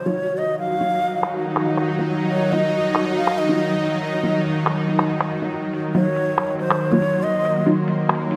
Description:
deep dubstep; 140 BPM; 4/4; half-time; Eb dorian; A4 = 440 Hz
breathy low ney; melody; 0.0-7.7 s; C5 to F5; -26 LUFS; equal; dub echo
bowed-like drone; sustained chords; 0.0-8.4 s; Eb3 to Eb4; -25 LUFS; equal; built-in reverb
flickering grainy texture; texture; 0.0-8.4 s; Gb3 to C6; -31 LUFS; equal; built-in reverb, analog chorus
filtered dub chord stab; stabs; 0.1-7.8 s; Gb3 to F4; -28 LUFS; equal
trip hop sampler-style drum kit; drums; 0.2-8.4 s; finger snaps, hi-hat; -27 LUFS; equal; low-pass filter on hats, low-pass filter on snare
wet lush hall reverb, RT60 2.0 s; bright 1980s-style digital production; -21 LUFS; mono
0.0-8.4 A section
0.0 Ebmadd9

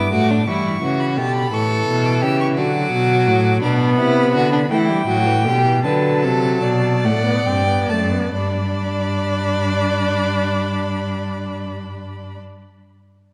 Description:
classical, baroque-style fugue for string quartet; 44-58 BPM (dotted quarters); 6/8; straight; G major; A4 = 440 Hz
rich violin; melody; 0.0-12.4 s; F#5 to E6; -28 LUFS; equal
rich violin; second line; 0.0-12.4 s; D4 to D5; -25 LUFS; equal
rich viola; accompaniment; 0.0-12.4 s; D3 to D4; -24 LUFS; equal
rich cello; bass; 0.0-12.4 s; F#2 to E3; -22 LUFS; equal
wet concert hall reverb, RT60 1.8 s; -18 LUFS; mono
0.0-8.3 A section; 8.3-13.3 B section
slowing down 2.6-8.3
0.5 Em7; 1.5 A7; 2.6 D; 3.6 Bm; 4.7 Em; 5.8 D7; 8.3 G

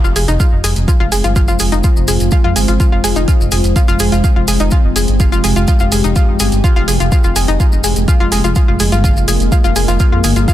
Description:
melodic techno; 125 BPM; 4/4; straight; F minor; A4 = 439 Hz
deep dark ambient pad; sustained chords; 0.1-10.5 s; Ab3 to G4; -19 LUFS; equal; chorus, built-in reverb, sidechain pumping
analog pluck; arpeggios; 0.0-10.5 s; Eb4 to Ab4; -19 LUFS; left 1 dB; chorus, sidechain pumping, dub echo
dark detuned saw bass; bass; 0.0-10.5 s; F1 to F2; -15 LUFS; equal; sidechain pumping
maracas; percussion; 0.0-10.5 s; -23 LUFS; left 2 dB
electronic hi-hat; drums; 0.2-10.5 s; -22 LUFS; right 2 dB; sidechain pumping on hats
electronic kick drum; drums; 0.4-10.5 s; -12 LUFS; equal
little or no reverb; dense, heavily limited modern master; -10 LUFS; side -13 dB against mid
0.0-10.5 A section
0.0 Fm

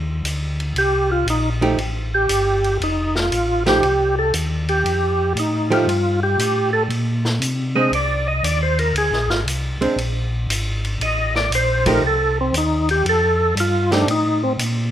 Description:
soul jazz organ trio; 117 BPM; 4/4; swing 67% on 8ths; F mixolydian; A4 = 440 Hz
mellow tonewheel organ; bass; 0.0-14.9 s; F1 to C3; -22 LUFS; equal; chorus vibrato, slow rotary speaker
vintage drum kit; drums; 0.2-14.8 s; hi-hat, kick drum, ride cymbal, snare drum; -27 LUFS; equal
percussive tonewheel organ; melody; 0.8-14.5 s; C4 to Eb5; -19 LUFS; equal; slow rotary speaker, overdrive, chorus vibrato
archtop guitar, miked and amplified; accompaniment; 1.6-14.1 s; F3 to G4; -21 LUFS; right 3 dB
light reverb; minimal, uncompressed stereo recording; -17 LUFS; side -11 dB against mid
0.0-14.9 A section
tonewheel organ solo 0.0-14.9
0.0 F9; 6.9 Bb9; 11.0 F9

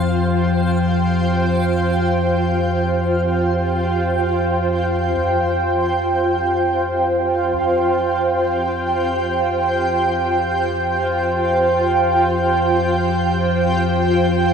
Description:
dark ambient drone; free time; A4 = 440 Hz
granular cloud pad; sustained chords; 0.0-14.5 s; F4 to G5; -17 LUFS; right 1 dB; built-in reverb
deep rumbling drone; drone; 0.0-14.5 s; F2 to F3; -22 LUFS; left 1 dB; built-in reverb, lush chorus
backwards swelling texture; texture; 0.0-5.2 s; F4 to F5; -30 LUFS; equal; built-in reverb
taiko ensemble; percussion; 5.2-7.8 s; barely audible
wet cathedral reverb, RT60 5.6 s; dreamy mix soaked in reverb; -16 LUFS; side -6 dB against mid
0.0-5.2 A section; 5.2-14.5 A section
filter sweep on synth drone 5.2-14.5
0.0 F5

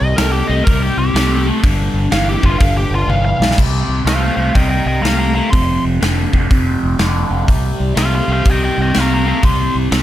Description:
blues rock power trio and southern rock; 123 BPM; 4/4; swing 65% on 8ths; C minor; A4 = 436 Hz
biting lead guitar; melody; 0.0-9.7 s; F4 to C6; -20 LUFS; equal; overdrive, plate reverb
raw garage guitar; riff; 0.0-10.0 s; F2 to A3; -19 LUFS; equal; overdrive, phaser
growling fingered electric bass; bass; 0.0-10.0 s; F1 to C2; -17 LUFS; equal; overdrive
big rock drum kit; drums; 0.2-10.0 s; crash cymbal, hi-hat, kick drum, snare drum, toms; -17 LUFS; equal
little or no reverb; -12 LUFS; side -13 dB against mid
0.0-3.6 A section; 3.6-10.0 A section
lead electric guitar solo 0.0-10.0; drum fill 3.1-3.6
0.0 C5; 1.6 G5; 3.6 Cm; 5.5 F5; 7.5 C5

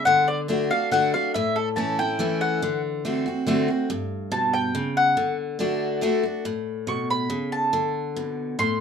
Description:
bluegrass; 141 BPM; 3/4; straight; D major; A4 = 441 Hz
mandolin; melody; 0.0-8.8 s; A4 to C#6; -22 LUFS; equal
picked steel-string acoustic guitar; accompaniment; 0.0-8.8 s; G2 to F#4; -24 LUFS; left 1 dB
moderate studio ambience, RT60 0.5 s; minimal, uncompressed stereo recording; -22 LUFS; side -7 dB against mid
0.0-6.5 A section; 6.5-8.8 A section
mandolin solo 0.0-8.8
0.1 D; 1.3 A; 2.6 D7; 3.9 G; 5.2 D; 6.5 A; 7.7 D5

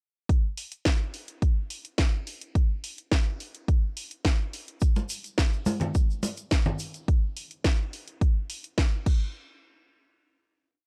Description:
nu-disco; 106 BPM; 4/4; straight
electronic kick drum; drums; 0.3-9.2 s; -26 LUFS; equal
house drum kit; drums; 0.3-9.2 s; crash cymbal, hi-hat, snare drum; -34 LUFS; equal
tube shaker and congas; percussion; 4.8-7.1 s; -32 LUFS; equal
digital ambience; dry, gritty hardware recording, cassette tape; -28 LUFS; mono
0.3-9.3 drop; 9.3-10.9 final hit
drop 0.3-9.3

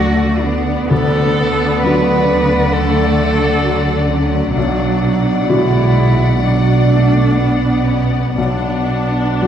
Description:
cinematic, emotional film score for orchestra; 57-67 BPM; 4/4; rubato; A4 = 442 Hz
muted cello; melody; 0.0-9.5 s; B3 to B4; -19 LUFS; right 2 dB
muted studio violin section; second line; 0.0-9.5 s; D5 to F#5; -21 LUFS; left 7 dB
muted studio viola section; accompaniment; 0.0-9.5 s; F#3 to D4; -22 LUFS; right 1 dB
warm baby grand piano; accompaniment; 0.0-9.5 s; B1 to F#4; -20 LUFS; equal
muted studio cello section; bass; 0.0-9.5 s; B2 to D3; -20 LUFS; right 1 dB
muted studio double bass section; bass; 0.0-9.5 s; B1 to D2; -18 LUFS; right 1 dB
wet scoring stage reverb, RT60 1.4 s; heard from further back in the room, nothing above 10.5 kHz; -12 LUFS; side -9 dB against mid
0.0-9.5 A section
0.0 D; 4.6 Bm

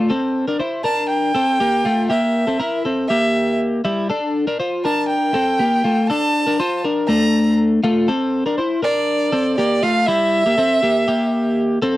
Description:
indie pop; 120 BPM; 4/4; straight; A4 = 444 Hz
twelve-string electric guitar; arpeggios; 0.0-12.0 s; G3 to C5; -17 LUFS; left 1 dB
rich violin; melody; 0.8-11.6 s; D5 to Bb5; -19 LUFS; right 2 dB
light reverb; dry, close 1970s-style studio recording; -16 LUFS; side -16 dB against mid
0.0-12.0 A section
0.1 C7; 4.1 Bbmaj7; 8.1 C7

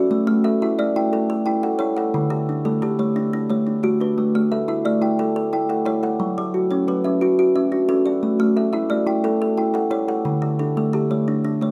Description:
southern african traditional; 118 BPM (dotted quarters); 12/8; straight; A mixolydian; A4 = 440 Hz
kalimba; arpeggios; 0.0-11.7 s; D3 to D5; -22 LUFS; equal
kalimba; arpeggios; 0.0-11.7 s; D3 to G5; -25 LUFS; equal
moderate recital hall reverb, RT60 1.5 s; close, detailed microphones; -21 LUFS; mono
0.0-11.7 A section
0.1 A; 2.1 D; 4.2 A; 6.2 F#m; 8.2 A; 10.3 D

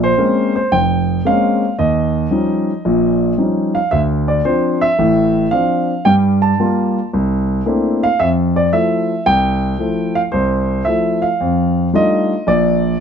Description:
solo jazz; 112 BPM; 4/4; swing 69% on 8ths; F major; A4 = 440 Hz
warm concert grand piano; solo; 0.0-13.0 s; F1 to A5; -13 LUFS; equal
light reverb; close, detailed microphones; -13 LUFS; side -7 dB against mid
0.0-12.5 A section
0.0 Bbm9; 1.8 Eb9; 3.9 Dm7; 6.0 Gm7; 7.1 C13; 8.2 Fmaj7; 11.4 F13; 12.5 Bb

